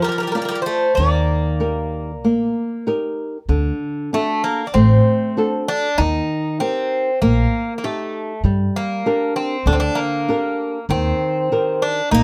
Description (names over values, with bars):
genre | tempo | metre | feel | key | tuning
greek folk, Greek bouzouki band | 97 BPM | 4/4 | straight | unclear | A4 = 438 Hz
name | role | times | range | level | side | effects
Greek bouzouki | melody | 0.0-12.2 s | A3 to D5 | -23 LUFS | equal | none
Greek bouzouki | second line | 0.0-2.8, 12.1-12.2 s | G3 to Bb3 | -30 LUFS | equal | none
flamenco guitar | accompaniment | 0.0-12.2 s | D3 to D5 | -23 LUFS | equal | none
upright bass | bass | 1.0-12.2 s | A1 to G2 | -21 LUFS | equal | none
room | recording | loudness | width
light reverb | none | -19 LUFS | mono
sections
0.0-3.5 A section; 3.5-12.2 B section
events
speeding up 0.0-12.2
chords
0.0 Bb; 1.0 Eb; 3.5 D; 6.0 Eb; 8.4 Gm; 10.9 Eb